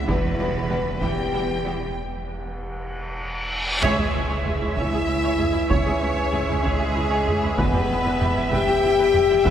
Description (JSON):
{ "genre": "cinematic, hybrid orchestral and electronic film score", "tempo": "64 BPM (dotted quarters)", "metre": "6/8", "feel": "straight", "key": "C# minor", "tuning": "A4 = 444 Hz", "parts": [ { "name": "warm symphonic violin section", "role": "melody", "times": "0.0-9.5 s", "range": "B4 to G#5", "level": "-34 LUFS", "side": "left 2 dB", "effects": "none" }, { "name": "dark French horn section", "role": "sustained chords", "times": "0.0-9.5 s", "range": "G#3 to G4", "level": "-24 LUFS", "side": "left 4 dB", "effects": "none" }, { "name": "pure sine sub bass", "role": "bass", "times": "0.0-9.5 s", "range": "E1 to C#2", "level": "-32 LUFS", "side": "equal", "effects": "none" }, { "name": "bright symphonic violin section", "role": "second line", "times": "0.1-9.5 s", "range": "B3 to G5", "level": "-30 LUFS", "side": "left 2 dB", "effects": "none" }, { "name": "rich symphonic viola section", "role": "accompaniment", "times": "0.1-9.5 s", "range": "E3 to E5", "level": "-28 LUFS", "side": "right 2 dB", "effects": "none" }, { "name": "clear symphonic cello section", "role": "bass", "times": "0.1-9.5 s", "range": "C#2 to E2", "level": "-31 LUFS", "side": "right 3 dB", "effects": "none" }, { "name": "clear symphonic double bass section", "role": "bass", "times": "0.1-9.5 s", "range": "E1 to C#2", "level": "-34 LUFS", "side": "right 3 dB", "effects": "none" }, { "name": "taiko ensemble", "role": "drums", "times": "0.1-9.5 s", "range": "none", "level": "-28 LUFS", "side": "equal", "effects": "none" }, { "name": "reverse cymbal and impact", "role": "sound effects", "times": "2.7-5.7 s", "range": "none", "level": "-30 LUFS", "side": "equal", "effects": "none" }, { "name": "warm trombone section", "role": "sustained chords", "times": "3.8-9.5 s", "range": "E3 to G#3", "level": "-31 LUFS", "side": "right 3 dB", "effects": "none" } ], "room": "wet cathedral reverb, RT60 5.3 s", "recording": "recorded in a church or concert hall", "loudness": "-20 LUFS", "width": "side -9 dB against mid", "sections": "0.0-3.8 A section; 3.8-9.5 A section", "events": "break 2.0-3.8; reverse cymbal 2.7-3.8; drum fill 3.4-3.8; band accent 3.8-4.5; impact 3.8-5.7", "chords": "0.1 Em; 3.8 C#m; 7.6 Em" }